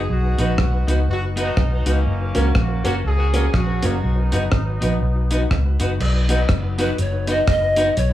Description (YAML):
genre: ska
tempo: 122 BPM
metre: 4/4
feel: swing 59% on 8ths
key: B major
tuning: A4 = 440 Hz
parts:
  - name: mellow horn section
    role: melody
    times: 0.0-5.5 s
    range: F#3 to G#4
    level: -27 LUFS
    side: right 1 dB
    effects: tape echo
  - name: dark upright piano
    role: stabs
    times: 0.0-7.9 s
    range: C#4 to B4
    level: -27 LUFS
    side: left 1 dB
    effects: tape echo
  - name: vintage muted fingered electric bass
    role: bass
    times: 0.0-8.1 s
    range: F#1 to C#2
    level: -20 LUFS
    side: equal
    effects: none
  - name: clean electric guitar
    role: accompaniment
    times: 0.4-7.9 s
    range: A#3 to F#4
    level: -26 LUFS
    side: right 1 dB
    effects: none
  - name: deep reggae drum kit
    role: drums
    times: 0.4-8.1 s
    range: crash cymbal, hi-hat, kick drum, rim click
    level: -22 LUFS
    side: equal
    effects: none
  - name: breathy bright pan flute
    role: melody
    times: 6.8-8.1 s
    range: B4 to D#5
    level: -20 LUFS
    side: equal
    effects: none
room: moderate studio reverb, RT60 0.6 s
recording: studio ambience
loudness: -17 LUFS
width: side -13 dB against mid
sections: 0.0-6.0 A section; 6.0-8.1 B section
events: pan flute solo 6.0-8.1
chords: 0.0 B; 2.1 F#; 4.0 B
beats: | 0.10 0.59 1.08 1.57 | 2.07 2.56 3.05 3.54 | 4.03 4.53 5.02 5.51 | 6.00 6.49 6.99 7.48 | 7.97